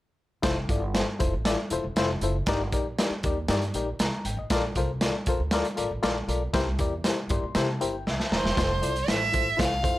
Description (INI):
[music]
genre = uptempo 1960s-style soul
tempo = 118 BPM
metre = 4/4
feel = straight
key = F major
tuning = A4 = 441 Hz
[part]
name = barky reed electric piano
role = accompaniment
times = 0.4-10.0 s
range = G2 to C6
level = -29 LUFS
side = left 4 dB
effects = fast tremolo
[part]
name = upright bass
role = bass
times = 0.4-10.0 s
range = Eb1 to C3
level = -31 LUFS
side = right 1 dB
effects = none
[part]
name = crunchy breakbeat drum kit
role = drums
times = 0.4-10.0 s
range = hi-hat, kick drum, snare drum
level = -27 LUFS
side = right 1 dB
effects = none
[part]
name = rich violin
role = melody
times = 8.4-10.0 s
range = C5 to F5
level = -26 LUFS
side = right 2 dB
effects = none
[sound]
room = moderate studio reverb, RT60 0.8 s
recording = none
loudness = -24 LUFS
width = side -16 dB against mid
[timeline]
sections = 0.4-8.6 A section; 8.6-10.0 B section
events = reed electric piano fill 7.0-8.6; drum fill 8.1-8.6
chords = 0.4 Fmaj7; 2.5 Ebmaj7/G; 4.5 Bbmaj7; 6.5 C7; 8.6 Fmaj7